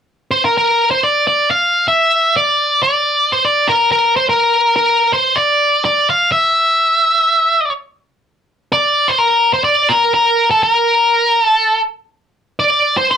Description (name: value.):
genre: rock.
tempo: 124 BPM.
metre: 4/4.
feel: straight.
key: unclear.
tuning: A4 = 440 Hz.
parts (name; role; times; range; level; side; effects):
octave-fuzz lead guitar; melody; 0.3-13.2 s; A4 to F5; -11 LUFS; equal; distortion.
room: moderate small room ambience, RT60 0.5 s.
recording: rough rehearsal-room recording.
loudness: -11 LUFS.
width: side -8 dB against mid.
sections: 0.5-8.2 A section; 8.2-13.2 B section.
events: none.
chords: none.